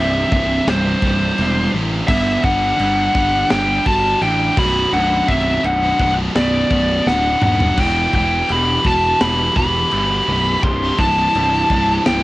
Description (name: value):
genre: heavy metal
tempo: 84 BPM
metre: 4/4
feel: straight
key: B phrygian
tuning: A4 = 441 Hz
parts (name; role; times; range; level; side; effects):
- high-gain lead guitar; melody; 0.0-12.2 s; C5 to C6; -17 LUFS; left 1 dB; distortion
- high-gain lead guitar; second line; 0.0-12.2 s; G3 to G4; -23 LUFS; right 2 dB; distortion, cassette tape
- heavy high-gain guitar; riff; 0.0-12.2 s; B1 to G3; -26 LUFS; left 6 dB; distortion, cassette tape
- heavy high-gain guitar; riff; 0.0-12.2 s; B1 to G3; -26 LUFS; right 5 dB; distortion, cassette tape
- fuzz fingered electric bass; bass; 0.0-12.2 s; B0 to A1; -21 LUFS; equal; overdrive
- modern studio drum kit; drums; 0.3-12.2 s; china cymbal, crash cymbal, kick drum, snare drum, toms; -22 LUFS; equal; cassette tape
room: light reverb, studio ambience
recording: home recording on cassette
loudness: -14 LUFS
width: side -18 dB against mid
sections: 0.0-12.2 A section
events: drum fill 7.1-7.8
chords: 0.0 C; 2.1 G5; 4.6 Bm; 7.8 Em; 10.6 C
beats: 0.67 1.38 | 2.09 2.80 3.51 4.22 | 4.93 5.64 6.35 7.06 | 7.78 8.49 9.20 9.92 | 10.63 11.34 12.06